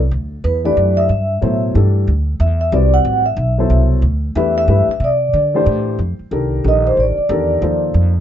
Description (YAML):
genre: modal jazz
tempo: 184 BPM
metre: 3/4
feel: swing 63% on 8ths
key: unclear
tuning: A4 = 440 Hz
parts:
  - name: upright bass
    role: bass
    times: 0.0-8.2 s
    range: A1 to D3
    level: -16 LUFS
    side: equal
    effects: none
  - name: vibraphone with soft mallets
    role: melody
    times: 0.4-7.9 s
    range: B4 to F#5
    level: -17 LUFS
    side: right 1 dB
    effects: none
  - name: dark upright piano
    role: accompaniment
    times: 0.6-8.1 s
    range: B2 to D5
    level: -20 LUFS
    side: left 4 dB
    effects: none
room: light reverb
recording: nothing above 7.8 kHz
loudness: -13 LUFS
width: side -10 dB against mid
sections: 0.0-6.0 A section; 6.0-8.2 B section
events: vibraphone solo 6.0-8.2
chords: 0.1 Em/D; 2.1 D9sus4; 4.0 Em/D; 5.0 C69; 6.0 F9